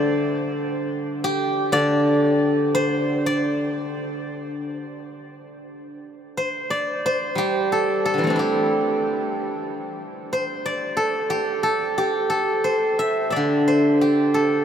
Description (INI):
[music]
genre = chinese traditional, Chinese solo plucked strings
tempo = 60 BPM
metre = 2/4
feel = rubato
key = D shang mode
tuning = A4 = 436 Hz
[part]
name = steel-string zither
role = solo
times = 0.0-14.6 s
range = D3 to E5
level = -20 LUFS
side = equal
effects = none
[sound]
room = wet huge ambient reverb, RT60 7.9 s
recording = in a vast, echoing space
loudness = -20 LUFS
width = side -8 dB against mid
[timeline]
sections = 0.0-5.4 A section; 5.4-14.6 B section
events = none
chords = none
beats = 0.26 | 1.24 2.23 | 3.25 4.30 | 5.35 6.37 | 7.37 8.37 | 9.35 10.33 | 11.32 12.34 | 13.37 14.39